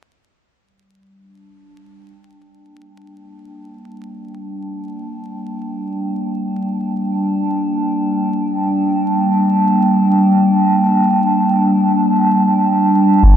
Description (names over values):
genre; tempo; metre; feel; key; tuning
ambient dub; free time; none; none; G minor; A4 = 440 Hz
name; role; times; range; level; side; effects
warbly tape-like pad; sustained chords; 3.3-13.4 s; G3 to A5; -14 LUFS; equal; chorus, built-in reverb
soft dub sub bass; bass; 13.2-13.4 s; G1; -7 LUFS; equal; none
room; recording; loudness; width
wet echo chamber reverb, RT60 1.8 s; vinyl crackle; -13 LUFS; side -10 dB against mid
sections
0.6-13.2 A section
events
fade-in on ambient pad 0.6-13.2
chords
0.6 Gm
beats
free time